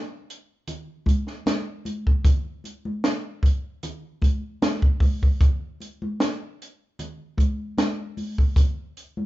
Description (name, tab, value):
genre	R&B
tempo	76 BPM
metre	4/4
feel	straight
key	none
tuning	none
part	compact cocktail drum kit	drums	0.3-9.2 s	hi-hat, kick drum, snare drum	-20 LUFS	equal	none
part	congas	percussion	0.7-9.3 s	none	-33 LUFS	left 1 dB	none
room	little or no reverb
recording	band playing live in one room, nothing above 7.6 kHz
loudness	-21 LUFS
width	side -16 dB against mid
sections	0.0-9.3 A section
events	none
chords	none